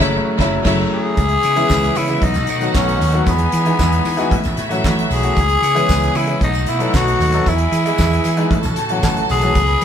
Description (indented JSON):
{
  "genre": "disco",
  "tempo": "114 BPM",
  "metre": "4/4",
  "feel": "straight",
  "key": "C# minor",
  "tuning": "A4 = 440 Hz",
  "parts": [
    { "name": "growling tenor saxophone", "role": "melody", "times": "0.0-9.8 s", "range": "B3 to G#4", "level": "-18 LUFS", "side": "left 2 dB", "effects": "none" },
    { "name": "rich studio string section", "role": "second line", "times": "0.0-9.8 s", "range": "E4 to B5", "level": "-24 LUFS", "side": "equal", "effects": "none" },
    { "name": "bright concert grand piano", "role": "accompaniment", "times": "0.0-9.6 s", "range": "C#3 to D#5", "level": "-21 LUFS", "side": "left 1 dB", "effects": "none" },
    { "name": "clear studio string section", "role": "sustained chords", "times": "0.0-9.8 s", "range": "B2 to F#4", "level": "-28 LUFS", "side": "right 2 dB", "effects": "none" },
    { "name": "vintage slap bass", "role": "bass", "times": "0.0-9.8 s", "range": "F#1 to E3", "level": "-19 LUFS", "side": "right 1 dB", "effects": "none" },
    { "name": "damped 70s drum kit", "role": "drums", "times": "0.0-9.8 s", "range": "crash cymbal, handclaps, hi-hat, kick drum, snare drum", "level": "-22 LUFS", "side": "equal", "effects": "none" },
    { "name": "tambourine", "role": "percussion", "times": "1.2-9.7 s", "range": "none", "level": "-35 LUFS", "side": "right 2 dB", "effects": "none" },
    { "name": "congas", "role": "percussion", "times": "9.6-9.8 s", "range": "none", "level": "-30 LUFS", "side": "left 5 dB", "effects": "none" }
  ],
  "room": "moderate stone room reverb, RT60 1.0 s",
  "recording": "band playing live in one room",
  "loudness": "-14 LUFS",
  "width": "side -8 dB against mid",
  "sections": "0.0-1.2 A section; 1.2-9.8 B section",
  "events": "band accent 0.0-1.2",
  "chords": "0.0 F#m7; 1.2 C#m7; 2.2 B7; 3.3 Emaj7; 4.3 A6; 5.4 C#m7; 6.4 B7; 7.5 Emaj7; 8.5 A6"
}